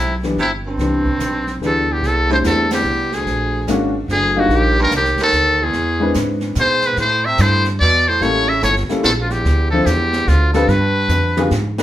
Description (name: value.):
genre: jazz, small-group swing and bop.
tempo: 146 BPM.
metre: 3/4.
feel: swing 64% on 8ths.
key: C major.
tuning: A4 = 440 Hz.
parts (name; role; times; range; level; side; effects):
trumpet with metal mute; melody; 0.0-11.5 s; C4 to E5; -17 LUFS; left 1 dB; none.
bright baritone saxophone; second line; 0.0-11.5 s; D2 to C#3; -23 LUFS; right 3 dB; none.
upright bass; bass; 0.0-11.8 s; F#1 to B2; -20 LUFS; equal; none.
warm baby grand piano; accompaniment; 0.2-11.8 s; E3 to B4; -19 LUFS; left 2 dB; none.
jazz brush drum kit; drums; 0.2-11.8 s; brushed snare drum, hi-hat, kick drum, ride cymbal, snare drum, toms; -28 LUFS; equal; none.
room: wet studio reverb, RT60 0.7 s.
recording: band playing live in one room.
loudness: -14 LUFS.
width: side -13 dB against mid.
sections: 0.0-2.0 A section; 2.0-11.8 B section.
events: band accent 2.6; drum fill 11.1-11.8.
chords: 0.0 Cmaj7; 2.0 C6; 3.3 Bb7alt; 4.5 Ebmaj7; 5.7 E7b13; 7.0 A5; 8.2 A7b9; 9.4 Dmadd9; 10.7 G7b9.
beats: 0.38 | 0.80 1.21 1.62 | 2.03 2.44 2.85 | 3.27 3.68 4.09 | 4.50 4.92 5.33 | 5.74 6.15 6.56 | 6.97 7.39 7.80 | 8.21 8.62 9.04 | 9.45 9.86 10.27 | 10.68 11.10 11.51.